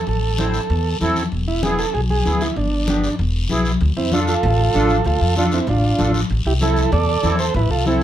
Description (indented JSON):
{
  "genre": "latin, cumbia",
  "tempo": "193 BPM",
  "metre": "4/4",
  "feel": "straight",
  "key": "A minor",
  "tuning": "A4 = 440 Hz",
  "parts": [
    { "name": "combo organ", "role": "melody", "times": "0.0-8.0 s", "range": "C4 to D5", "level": "-20 LUFS", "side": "right 3 dB", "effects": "none" },
    { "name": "upright bass", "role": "bass", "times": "0.1-8.0 s", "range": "E1 to F2", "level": "-20 LUFS", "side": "equal", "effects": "none" },
    { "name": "guiro", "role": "percussion", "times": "0.1-8.0 s", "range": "none", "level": "-31 LUFS", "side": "left 4 dB", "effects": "none" },
    { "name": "congas", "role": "percussion", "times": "0.2-8.0 s", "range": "none", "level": "-26 LUFS", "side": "left 3 dB", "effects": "none" },
    { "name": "accordion", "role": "accompaniment", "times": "0.4-8.0 s", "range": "B3 to C5", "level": "-22 LUFS", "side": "right 1 dB", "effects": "light tremolo tuning" }
  ],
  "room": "light reverb",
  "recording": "dark, warm production",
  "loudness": "-16 LUFS",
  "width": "side -11 dB against mid",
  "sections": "0.0-3.8 A section; 3.8-8.0 B section",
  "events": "none",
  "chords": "0.0 Am; 1.3 E; 2.6 G; 3.2 E; 3.8 Dm; 6.3 Am",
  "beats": "| 0.07 0.38 0.70 1.01 | 1.32 1.63 1.94 2.25 | 2.57 2.88 3.19 3.50 | 3.81 4.12 4.43 4.75 | 5.06 5.37 5.68 5.99 | 6.30 6.62 6.93 7.24 | 7.55 7.86"
}